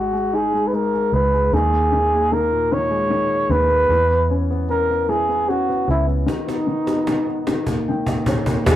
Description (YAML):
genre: six-eight pop ballad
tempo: 50 BPM (dotted quarters)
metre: 6/8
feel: straight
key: unclear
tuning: A4 = 440 Hz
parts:
  - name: breathy flugelhorn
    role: melody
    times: 0.0-7.8 s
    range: D#4 to C#5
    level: -19 LUFS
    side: right 1 dB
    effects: none
  - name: warm concert grand piano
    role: accompaniment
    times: 0.0-8.8 s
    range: A#2 to G5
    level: -23 LUFS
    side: left 3 dB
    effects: none
  - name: vintage muted fingered electric bass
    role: bass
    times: 0.0-8.8 s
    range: G#1 to E2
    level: -22 LUFS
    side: equal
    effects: none
  - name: cajon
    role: drums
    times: 6.3-8.8 s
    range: none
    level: -22 LUFS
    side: equal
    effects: none
  - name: warm studio string section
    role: sustained chords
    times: 8.7-8.8 s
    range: B2 to G#4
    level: -24 LUFS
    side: right 1 dB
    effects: none
room: moderate studio reverb, RT60 0.5 s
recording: rough rehearsal-room recording, warm saturation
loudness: -17 LUFS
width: side -12 dB against mid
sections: 0.0-8.7 A section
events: break 6.3-8.7; drum fill 6.3-8.7; grand piano fill 7.5-8.7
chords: 0.0 G#5; 1.5 D#sus4; 3.9 C#m7/E; 6.3 B/D#; 7.5 D#5